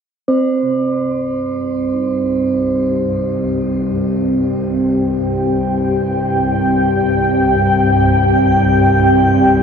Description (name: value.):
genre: dark ambient drone.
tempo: free time.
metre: none.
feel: none.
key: unclear.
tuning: A4 = 440 Hz.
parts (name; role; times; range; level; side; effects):
deep dark ambient pad; sustained chords; 1.7-9.6 s; C4 to G5; -15 LUFS; left 1 dB; chorus, built-in reverb, shimmer reverb.
swarming drone; drone; 1.2-9.6 s; C2 to G2; -20 LUFS; equal; built-in reverb.
quartz singing bowl; texture; 0.3-9.6 s; C4 to C5; -19 LUFS; right 3 dB; shimmer reverb.
gamelan-type bronze metallophone; arpeggios; 0.6-7.6 s; C3 to Eb4; -35 LUFS; right 3 dB; none.
room: wet cathedral reverb, RT60 4.8 s.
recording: none.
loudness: -13 LUFS.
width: side -6 dB against mid.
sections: 0.3-9.6 A section.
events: fade-in on synth drone 0.3-9.6.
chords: 0.3 C5.